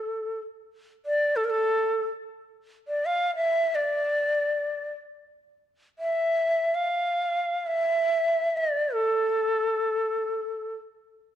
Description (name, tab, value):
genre	Arabic maqam ensemble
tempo	free time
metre	none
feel	none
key	unclear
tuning	A4 = 440 Hz
part	breathy bright ney	solo	0.0-10.7 s	A4 to F5	-24 LUFS	equal	none
room	moderate recital hall reverb, RT60 1.6 s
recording	dark, warm production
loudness	-24 LUFS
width	side -10 dB against mid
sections	0.0-2.2 A section; 2.2-11.3 A section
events	none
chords	none